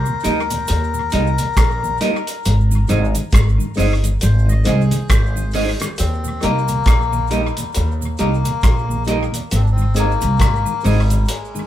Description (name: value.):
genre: roots reggae.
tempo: 68 BPM.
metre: 4/4.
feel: swing 59% on 16ths.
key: Eb major.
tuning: A4 = 440 Hz.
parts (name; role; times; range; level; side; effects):
melodica; melody; 0.0-11.7 s; G3 to Eb5; -24 LUFS; left 7 dB; tape echo.
upright bass; bass; 0.0-11.2 s; G1 to Eb2; -17 LUFS; equal; none.
mellow tonewheel organ; accompaniment; 0.1-11.6 s; Eb2 to Eb4; -25 LUFS; left 1 dB; slow rotary speaker.
cabasa; percussion; 0.1-11.7 s; none; -33 LUFS; right 5 dB; tape echo.
semi-hollow electric guitar; accompaniment; 0.2-11.0 s; Eb4 to Eb5; -23 LUFS; right 4 dB; none.
cloth-damped thuddy drum kit; drums; 0.2-11.5 s; hi-hat, kick drum, rim click; -20 LUFS; equal; none.
room: light reverb.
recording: band playing live in one room.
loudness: -15 LUFS.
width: side -12 dB against mid.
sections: 0.0-6.0 A section; 6.0-11.7 B section.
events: melodica solo 0.0-6.0.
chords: 0.0 Eb; 2.5 Ab; 6.0 Eb; 9.5 Ab.